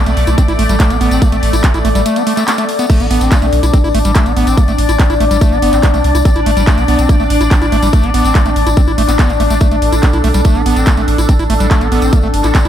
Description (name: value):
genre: psychedelic trance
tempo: 143 BPM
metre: 4/4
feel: straight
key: A minor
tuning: A4 = 440 Hz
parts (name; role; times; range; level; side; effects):
- bubbling stepped-filter texture; sustained chords; 0.0-12.7 s; A3 to D5; -16 LUFS; left 2 dB; chorus, built-in reverb, sidechain pumping
- overdriven acid bass; riff; 0.0-12.7 s; G3 to E4; -18 LUFS; equal; distortion, auto-pan, vintage 12-bit sampler grit, sidechain pumping, analog delay
- round analog bass; bass; 0.1-12.7 s; G1 to C2; -15 LUFS; equal; tube saturation
- drum and bass drum kit; drums; 0.1-12.7 s; crash cymbal, handclaps, hi-hat; -21 LUFS; right 1 dB; none
- tambourine; percussion; 0.1-12.7 s; none; -28 LUFS; left 2 dB; none
- electronic kick drum; drums; 0.4-12.6 s; none; -10 LUFS; equal; none
room: light reverb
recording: none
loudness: -9 LUFS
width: side -10 dB against mid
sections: 0.0-2.9 A section; 2.9-12.7 A section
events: drop 0.0-2.9, 2.9-12.7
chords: 0.0 A5